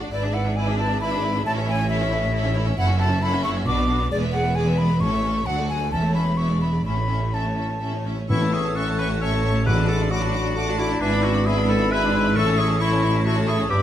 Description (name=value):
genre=quick classical-period movement for symphony orchestra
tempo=134 BPM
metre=3/4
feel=rubato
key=A major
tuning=A4 = 440 Hz
part: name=clear studio violin section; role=melody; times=0.0-13.8 s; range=B4 to D6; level=-34 LUFS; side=left 1 dB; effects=none
part: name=rich studio violin section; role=second line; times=0.0-13.8 s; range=C#4 to F#5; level=-33 LUFS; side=equal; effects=none
part: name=rich studio viola section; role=accompaniment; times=0.0-13.8 s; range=F#3 to F#4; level=-30 LUFS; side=equal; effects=none
part: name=rich studio cello section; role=bass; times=0.0-13.8 s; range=D2 to B2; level=-25 LUFS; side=equal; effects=none
part: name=rich studio double bass section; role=bass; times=0.0-13.8 s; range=E1 to D2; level=-26 LUFS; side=right 2 dB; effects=none
part: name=mellow concert flute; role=second line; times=0.1-13.8 s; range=D5 to E6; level=-28 LUFS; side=left 2 dB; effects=none
part: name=bright clarinet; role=second line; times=8.3-13.8 s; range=D4 to C#5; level=-25 LUFS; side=left 2 dB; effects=none
part: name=warm oboe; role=second line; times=8.3-13.8 s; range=C#5 to F#5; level=-34 LUFS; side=left 2 dB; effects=none
part: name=mellow bassoon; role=accompaniment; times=8.3-13.8 s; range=F#3 to B3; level=-30 LUFS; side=equal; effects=none
part: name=mellow French horn section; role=sustained chords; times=8.3-13.8 s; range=B3 to A4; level=-30 LUFS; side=left 2 dB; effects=none
part: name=timpani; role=percussion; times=8.3-10.3, 12.4-13.0 s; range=A2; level=-27 LUFS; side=left 1 dB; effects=none
room=wet stone room reverb, RT60 0.9 s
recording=none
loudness=-19 LUFS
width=side -11 dB against mid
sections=0.0-8.3 A section; 8.3-13.8 A section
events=none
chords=0.1 E7/G#; 1.5 A; 2.8 F#m7; 3.7 Bm; 4.1 E7; 5.0 A; 5.5 D; 5.9 A/E; 6.4 E7; 6.9 A; 9.7 D/A; 11.0 E7/G#; 12.4 A